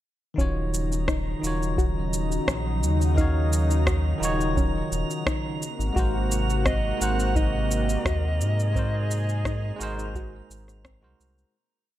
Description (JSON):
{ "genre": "sunset chillout", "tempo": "86 BPM", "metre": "4/4", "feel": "straight", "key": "Eb dorian", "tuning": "A4 = 441 Hz", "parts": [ { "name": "barky tine electric piano", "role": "accompaniment", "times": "0.3-11.6 s", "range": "Eb3 to F5", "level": "-32 LUFS", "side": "equal", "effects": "auto-pan, digital delay" }, { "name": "lush unison pad", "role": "sustained chords", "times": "0.4-11.5 s", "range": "C3 to Ab4", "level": "-31 LUFS", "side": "equal", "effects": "chorus" }, { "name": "soft round pluck", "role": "arpeggios", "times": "0.4-11.2 s", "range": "C4 to Gb4", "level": "-35 LUFS", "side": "left 2 dB", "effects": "chorus, digital delay" }, { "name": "warm sub bass", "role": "bass", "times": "0.4-11.4 s", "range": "Eb1 to Ab2", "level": "-26 LUFS", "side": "equal", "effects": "tube saturation" }, { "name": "electronic kick drum", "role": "drums", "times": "0.4-11.0 s", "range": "none", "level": "-27 LUFS", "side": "equal", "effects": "none" }, { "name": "electronic shaker and rim click", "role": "drums", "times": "0.4-11.5 s", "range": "none", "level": "-30 LUFS", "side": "equal", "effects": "overdrive" }, { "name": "drifting glass-harmonics texture", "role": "texture", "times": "0.7-11.6 s", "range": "Bb5", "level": "-39 LUFS", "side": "right 4 dB", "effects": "chorus, built-in reverb" }, { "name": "breathy soprano saxophone", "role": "melody", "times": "6.7-10.8 s", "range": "Eb5 to Gb5", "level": "-32 LUFS", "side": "right 1 dB", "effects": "digital delay" } ], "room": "light reverb", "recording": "dark, warm production", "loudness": "-22 LUFS", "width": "side -13 dB against mid", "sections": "0.4-11.5 groove", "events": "fade-out 7.8-11.5", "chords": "0.4 Ebm7; 5.6 Ab9", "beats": "| 0.38 1.08 1.78 2.48 | 3.17 3.87 4.57 5.27 | 5.96 6.66 7.36 8.06 | 8.75 9.45 10.15 10.85" }